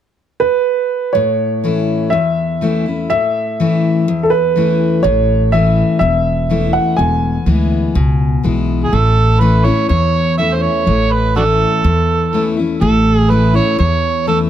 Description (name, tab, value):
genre	country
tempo	123 BPM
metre	4/4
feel	straight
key	A major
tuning	A4 = 441 Hz
part	warm upright piano	melody	0.4-8.4 s	A4 to G#5	-16 LUFS	right 3 dB	none
part	picked steel-string acoustic guitar	accompaniment	1.1-14.5 s	E2 to E4	-16 LUFS	left 4 dB	none
part	upright bass	bass	5.0-14.5 s	E1 to E2	-15 LUFS	equal	none
part	overdriven harmonica	second line	8.8-14.4 s	D4 to E5	-16 LUFS	right 5 dB	none
room	little or no reverb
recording	close, detailed microphones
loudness	-12 LUFS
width	side -10 dB against mid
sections	0.0-1.2 A section; 1.2-8.9 B section; 8.9-14.5 C section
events	harmonica solo 8.9-14.5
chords	0.0 N.C.; 1.2 A; 7.0 E; 8.9 A